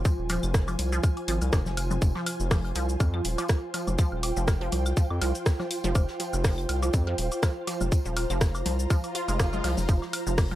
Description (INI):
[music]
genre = minimal techno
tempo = 122 BPM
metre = 4/4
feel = swing 55% on 16ths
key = F minor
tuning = A4 = 440 Hz
[part]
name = round analog bass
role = bass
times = 0.0-10.6 s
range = Eb1 to F2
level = -28 LUFS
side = equal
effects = sidechain pumping
[part]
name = ethereal airy pad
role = texture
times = 0.0-10.6 s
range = F4 to Bb5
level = -34 LUFS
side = right 2 dB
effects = ensemble chorus, built-in reverb, sidechain pumping
[part]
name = resonant blip pluck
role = riff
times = 0.1-10.6 s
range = C3 to F4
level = -35 LUFS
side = equal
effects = phaser, sidechain pumping, analog delay
[part]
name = electronic kick drum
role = drums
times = 0.1-10.5 s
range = none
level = -23 LUFS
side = equal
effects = overdrive
[part]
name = techno drum kit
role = drums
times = 0.1-10.5 s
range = hi-hat, rim click, shaker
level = -33 LUFS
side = equal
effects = overdrive
[part]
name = unplugged drum kit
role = drums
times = 0.1-10.6 s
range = hi-hat, snare drum, tambourine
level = -45 LUFS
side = equal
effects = high-pass filter on hats, high-pass filter on snare, high-pass filter on perc, high-pass filter on room
[part]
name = woodblock, claves and congas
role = percussion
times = 0.3-10.6 s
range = none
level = -37 LUFS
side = left 2 dB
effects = tape echo
[part]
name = swell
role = sound effects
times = 9.0-9.9 s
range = none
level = -35 LUFS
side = left 1 dB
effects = none
[sound]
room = studio ambience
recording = dry, gritty hardware recording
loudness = -24 LUFS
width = side -14 dB against mid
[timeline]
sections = 0.0-10.6 A section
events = swell 9.0-9.9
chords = 0.0 Fm7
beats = | 0.05 0.54 1.03 1.53 | 2.02 2.51 3.00 3.49 | 3.99 4.48 4.97 5.46 | 5.95 6.45 6.94 7.43 | 7.92 8.41 8.90 9.39 | 9.89 10.38